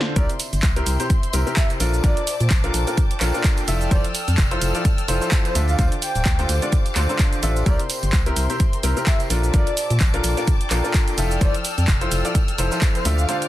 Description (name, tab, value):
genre	piano house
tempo	128 BPM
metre	4/4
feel	swing 57% on 16ths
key	F major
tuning	A4 = 440 Hz
part	bright grand piano	riff	0.0-13.4 s	Bb2 to E5	-26 LUFS	left 1 dB	sidechain pumping
part	punchy analog drum machine	drums	0.0-13.5 s	handclaps, hi-hat, shaker, snare drum	-27 LUFS	right 1 dB	overdrive, low-pass filter on perc, low-pass filter on snare, low-pass filter on hats, low-pass filter on room
part	breathy flute-like synth lead	melody	0.2-13.4 s	C5 to G5	-29 LUFS	equal	analog chorus
part	dark studio violin section	sustained chords	0.2-13.5 s	A4 to F6	-31 LUFS	left 3 dB	sidechain pumping
part	organ-like FM bass	bass	0.2-13.3 s	D1 to Bb2	-21 LUFS	equal	sidechain pumping
part	electronic kick drum	drums	0.2-12.9 s	none	-19 LUFS	equal	none
part	tambourine	percussion	0.2-13.4 s	none	-37 LUFS	right 4 dB	none
part	airy breathy pad	texture	0.6-13.5 s	G4 to A5	-34 LUFS	equal	chorus, sidechain pumping
room	little or no reverb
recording	dense, heavily limited modern master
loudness	-18 LUFS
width	side -14 dB against mid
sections	0.2-13.5 A section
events	break 0.0, 13.3; drum fill 0.0; drop 0.2-13.5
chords	0.2 C7; 1.8 Bbmaj7; 3.7 Fmaj7; 5.6 Dm7; 7.7 C7; 9.3 Bbmaj7; 11.2 Fmaj7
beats	| 0.16 0.63 1.10 1.57 | 2.04 2.51 2.98 3.44 | 3.91 4.38 4.85 5.32 | 5.79 6.26 6.72 7.19 | 7.66 8.13 8.60 9.07 | 9.54 10.01 10.47 10.94 | 11.41 11.88 12.35 12.82 | 13.29